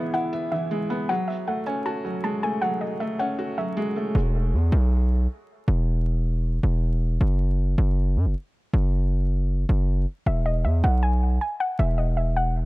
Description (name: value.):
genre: hip hop, trap.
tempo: 157 BPM.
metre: 4/4.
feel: half-time.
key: E major.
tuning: A4 = 441 Hz.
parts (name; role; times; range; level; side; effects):
soft round pluck; melody; 0.0-4.1, 10.3-12.5 s; D#5 to A5; -28 LUFS; left 1 dB; chorus, low-pass filter, dub echo.
felt-muted upright piano; accompaniment; 0.0-4.2 s; E3 to E5; -27 LUFS; equal; low-pass filter, dub echo.
distorted 808-style bass; bass; 4.2-12.7 s; E1 to F#2; -21 LUFS; equal; distortion.
room: studio reverb.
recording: echo-heavy mix, vinyl crackle.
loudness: -22 LUFS.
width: side -20 dB against mid.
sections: 0.0-4.1 A section; 4.1-12.7 B section.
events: none.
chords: 0.0 E; 1.1 F#madd9; 4.1 E5; 7.2 N.C.; 10.3 E.